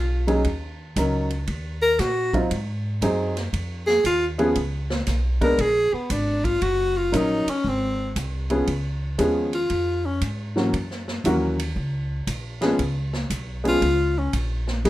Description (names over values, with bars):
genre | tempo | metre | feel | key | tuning
jazz, small-group swing and bop | 117 BPM | 4/4 | swing 67% on 8ths | Db mixolydian | A4 = 440 Hz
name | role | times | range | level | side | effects
warm tenor saxophone | melody | 0.0-10.2, 13.7-14.3 s | Cb4 to Bb4 | -22 LUFS | left 1 dB | none
upright bass | bass | 0.0-14.9 s | Gb1 to Bb2 | -26 LUFS | equal | none
warm baby grand piano | accompaniment | 0.3-14.9 s | Fb3 to Bb4 | -22 LUFS | equal | none
swinging big-band drum kit | drums | 0.3-14.9 s | hi-hat, kick drum, ride cymbal, snare drum | -32 LUFS | right 1 dB | none
room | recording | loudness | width
moderate studio reverb, RT60 0.6 s | rough home demo mix | -21 LUFS | side -15 dB against mid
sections
0.0-8.7 A section; 8.7-14.9 B section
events
tenor saxophone solo 8.7-14.9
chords
0.5 Ebm7; 2.5 Ab7; 4.6 Db5; 5.6 Absus2; 6.6 Ebm7; 7.6 Ab; 8.7 Db7; 10.7 Gb7; 12.8 Db7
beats
| 0.45 0.97 1.48 1.99 | 2.51 3.02 3.53 4.05 | 4.56 5.07 5.59 6.10 | 6.62 7.13 7.64 8.16 | 8.67 9.19 9.70 10.21 | 10.73 11.24 11.76 12.27 | 12.79 13.30 13.82 14.33 | 14.85